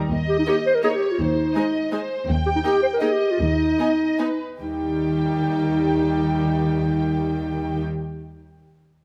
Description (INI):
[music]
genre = quick classical-period movement for symphony orchestra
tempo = 137-168 BPM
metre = 3/4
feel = rubato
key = Eb major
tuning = A4 = 444 Hz
[part]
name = dark studio violin section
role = melody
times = 0.1-7.8 s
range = Cb5 to G5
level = -32 LUFS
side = equal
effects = none
[part]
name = dark studio double bass section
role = bass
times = 0.1-7.8 s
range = Eb2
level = -32 LUFS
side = equal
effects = none
[part]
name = warm studio cello section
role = bass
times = 0.1-7.8 s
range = Eb2 to Eb3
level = -28 LUFS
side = equal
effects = none
[part]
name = mellow clarinet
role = second line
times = 0.3-7.8 s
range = Eb4 to C5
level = -24 LUFS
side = equal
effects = none
[part]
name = warm studio violin section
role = second line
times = 0.5-7.8 s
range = G4 to Ab5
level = -37 LUFS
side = equal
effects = none
[part]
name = warm studio viola section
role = accompaniment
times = 0.5-7.8 s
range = G3 to Eb4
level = -32 LUFS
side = equal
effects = none
[sound]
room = moderate scoring stage reverb, RT60 1.9 s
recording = close, detailed microphones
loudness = -22 LUFS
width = mono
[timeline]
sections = 0.1-4.6 A section; 4.6-7.1 B section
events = slowing down 1.7-4.6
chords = 0.1 Eb5; 1.2 Ab/Eb; 2.3 Eb; 3.4 Abm/Eb (rootless); 4.6 Eb